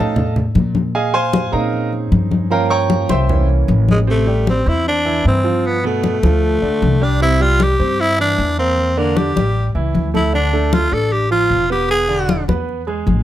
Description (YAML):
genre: Afro-Cuban jazz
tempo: 153 BPM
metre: 4/4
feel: straight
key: F minor, A minor from 4.1 s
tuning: A4 = 439 Hz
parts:
  - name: clear baby grand piano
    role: accompaniment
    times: 0.0-13.2 s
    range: B2 to Db6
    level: -20 LUFS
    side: right 4 dB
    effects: none
  - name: upright bass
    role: bass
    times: 0.0-13.2 s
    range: E1 to Bb2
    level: -18 LUFS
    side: equal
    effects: none
  - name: congas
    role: percussion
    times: 0.2-13.2 s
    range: none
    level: -20 LUFS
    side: left 3 dB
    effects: none
  - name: growling tenor saxophone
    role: melody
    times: 3.9-12.4 s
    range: Ab3 to A4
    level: -17 LUFS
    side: left 1 dB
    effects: none
room: light reverb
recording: close, detailed microphones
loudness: -14 LUFS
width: side -12 dB against mid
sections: 0.0-4.1 A section; 4.1-13.2 B section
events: grand piano solo 0.0-4.1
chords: 0.0 F7b13; 0.9 Bbm11; 2.5 Gm7b5; 3.3 C7b9; 4.1 Am7; 5.6 G9; 7.2 C; 8.8 Em7b5; 9.6 A7; 10.3 Dm; 11.9 E7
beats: 0.17 0.56 | 0.95 1.34 1.73 2.12 | 2.51 2.90 3.29 3.69 | 4.08 4.47 4.86 5.25 | 5.64 6.04 6.43 6.82 | 7.21 7.60 7.99 8.38 | 8.78 9.17 9.56 9.95 | 10.34 10.73 11.12 11.51 | 11.90 12.29 12.68 13.07